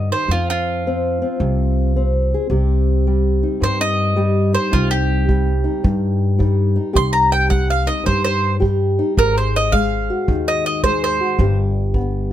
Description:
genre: acoustic country blues, solo or duo.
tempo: 108 BPM.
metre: 4/4.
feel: swing 66% on 8ths.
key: C minor.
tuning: A4 = 440 Hz.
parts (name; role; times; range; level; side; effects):
mandolin; melody; 0.0-11.6 s; F4 to C6; -20 LUFS; right 2 dB; none.
fingerpicked old ladder-braced acoustic guitar; accompaniment; 0.0-12.3 s; G2 to Ab4; -22 LUFS; left 2 dB; none.
upright bass; bass; 0.0-12.3 s; G1 to G2; -18 LUFS; equal; none.
kick drum; drums; 4.7-12.1 s; none; -21 LUFS; right 1 dB; none.
room: little or no reverb.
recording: none.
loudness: -15 LUFS.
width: side -11 dB against mid.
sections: 0.0-12.3 A section.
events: mandolin solo 0.0-12.3.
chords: 0.3 F5; 2.5 Cm; 9.2 Ab5; 11.4 G.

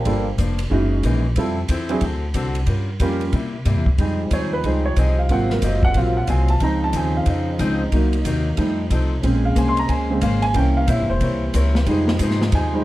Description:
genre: jazz, big band swing.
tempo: 183 BPM.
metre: 4/4.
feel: swing 64% on 8ths.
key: F minor.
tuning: A4 = 440 Hz.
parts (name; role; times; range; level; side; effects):
picked acoustic archtop guitar; accompaniment; 0.0-12.8 s; Gb2 to Db5; -27 LUFS; left 4 dB; none.
upright bass; bass; 0.0-12.8 s; E1 to C3; -20 LUFS; equal; none.
warm concert grand piano; accompaniment; 0.1-12.8 s; Db3 to C6; -23 LUFS; right 2 dB; none.
swinging big-band drum kit; drums; 0.1-12.6 s; hi-hat, kick drum, ride cymbal, snare drum; -26 LUFS; equal; none.
warm trombone section; sustained chords; 4.0-12.8 s; C3 to F4; -27 LUFS; equal; none.
room: light reverb.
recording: dark, warm production.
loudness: -17 LUFS.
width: side -16 dB against mid.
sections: 0.0-4.0 A section; 4.0-12.8 B section.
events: grand piano solo 4.0-12.8.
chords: 0.1 Gm7; 0.7 Gb13; 1.4 Fmaj7; 2.0 D7; 2.7 Gm7b5; 3.3 C7; 4.0 Fm7; 5.3 Ab13; 6.6 Dbmaj9; 7.9 Cm7b5; 8.6 F7; 9.2 Bbm9; 10.6 C7b9; 11.9 Fm7.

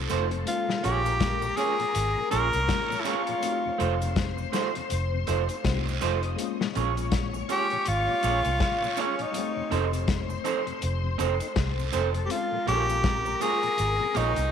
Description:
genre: lovers rock reggae.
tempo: 81 BPM.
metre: 4/4.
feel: swing 58% on 16ths.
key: Bb dorian.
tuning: A4 = 440 Hz.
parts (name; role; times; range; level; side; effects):
soft string machine; second line; 0.0-14.5 s; G4 to Eb6; -36 LUFS; left 11 dB; ensemble chorus.
FM electric piano; accompaniment; 0.0-14.5 s; G3 to G4; -38 LUFS; left 14 dB; chorus.
vintage muted fingered electric bass; bass; 0.0-14.5 s; F1 to C2; -29 LUFS; equal; tube saturation.
mellow tonewheel organ; accompaniment; 0.1-14.4 s; F2 to Eb4; -40 LUFS; left 9 dB; chorus vibrato, slow rotary speaker, slapback echo.
electric guitar through a small old amp; stabs; 0.1-14.3 s; A3 to Db5; -31 LUFS; right 13 dB; spring reverb.
vintage drum kit; drums; 0.1-14.5 s; hi-hat, kick drum, snare drum; -30 LUFS; left 3 dB; none.
cabasa and guiro; percussion; 0.1-14.5 s; none; -41 LUFS; right 12 dB; none.
breathy tenor saxophone; melody; 0.5-14.5 s; Db4 to Bb4; -27 LUFS; equal; tape echo.
room: light reverb, small room reverb.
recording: 1960s-style stereo with parts hard left and right.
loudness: -24 LUFS.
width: side -8 dB against mid.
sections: 0.0-14.5 A section.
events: none.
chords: 0.5 Bbm7; 3.4 F7; 6.4 Bbm7; 9.3 F7; 12.3 Bbm7.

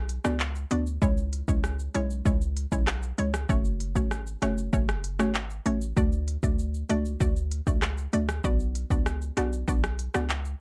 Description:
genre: dancehall.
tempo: 97 BPM.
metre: 4/4.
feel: straight.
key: unclear.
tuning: A4 = 441 Hz.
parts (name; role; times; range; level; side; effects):
hard-hitting 808-style bass; bass; 0.0-10.6 s; F#1 to D2; -33 LUFS; equal; none.
afro-pop drum kit; drums; 0.1-10.6 s; handclaps, hi-hat, kick drum, rim click, shaker; -30 LUFS; equal; vintage 12-bit sampler grit.
hollow square pluck; accompaniment; 0.2-10.3 s; G#3 to D5; -32 LUFS; equal; chorus, sidechain pumping.
room: little or no reverb.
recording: none.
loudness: -28 LUFS.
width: mono.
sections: 0.0-10.6 A section.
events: none.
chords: 0.0 Bm; 1.0 C#m; 3.5 F#m; 6.0 D; 8.4 Bm.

